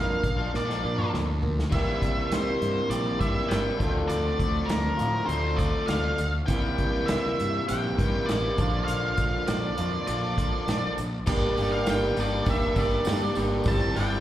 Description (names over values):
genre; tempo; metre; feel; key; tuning
indie rock; 100 BPM; 4/4; straight; G dorian; A4 = 445 Hz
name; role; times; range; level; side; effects
octave-fuzz lead guitar; melody; 0.0-14.2 s; Bb4 to A5; -31 LUFS; equal; distortion, slapback echo, digital delay
electric guitar through a small old amp; riff; 0.0-14.2 s; E3 to G4; -30 LUFS; right 3 dB; wide subtle chorus, slapback echo, digital delay
fuzz fingered electric bass; bass; 0.0-14.2 s; F1 to Bb2; -30 LUFS; equal; overdrive
unplugged drum kit; drums; 0.2-14.1 s; crash cymbal, hi-hat, kick drum, snare drum, toms; -29 LUFS; equal; none
overdriven electric guitar; riff; 0.4-14.2 s; Bb2 to G4; -32 LUFS; left 4 dB; slapback echo
tambourine; percussion; 11.3-14.0 s; none; -48 LUFS; right 3 dB; none
room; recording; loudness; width
studio reverb; live gig heard through the venue's PA, recital hall reverb; -24 LUFS; side -12 dB against mid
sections
0.0-1.7 A section; 1.7-11.3 B section; 11.3-14.2 C section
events
drum fill 0.5-1.7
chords
0.0 Bb; 1.7 C7; 3.8 Dm7; 6.5 C7; 8.6 Bb; 11.3 Gm; 13.7 C/G